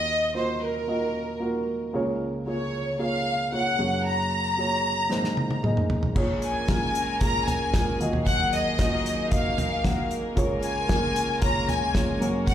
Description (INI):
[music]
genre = piano-driven pop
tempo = 114 BPM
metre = 4/4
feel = straight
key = unclear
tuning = A4 = 441 Hz
[part]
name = warm studio violin section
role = melody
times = 0.0-12.5 s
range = Bb4 to Bb5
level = -27 LUFS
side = left 1 dB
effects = slapback echo
[part]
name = dark upright piano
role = accompaniment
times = 0.0-12.5 s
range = Gb1 to Gb5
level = -27 LUFS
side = right 1 dB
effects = none
[part]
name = damped 70s drum kit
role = drums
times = 5.1-12.5 s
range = crash cymbal, hi-hat, kick drum, snare drum, toms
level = -26 LUFS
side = equal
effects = none
[part]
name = warm studio string section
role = sustained chords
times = 6.2-12.5 s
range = Gb3 to Bb4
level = -33 LUFS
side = equal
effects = none
[sound]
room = moderate club reverb, RT60 0.6 s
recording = live gig heard through the venue's PA, club reverb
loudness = -23 LUFS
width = side -10 dB against mid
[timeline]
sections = 0.0-6.2 A section; 6.2-12.5 B section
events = drum fill 5.1-6.2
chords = 0.0 Ebmadd9; 1.9 Db6; 3.8 Gbadd9; 5.1 Abadd9; 6.2 Bbm7; 8.0 Ebmadd9; 10.4 Db6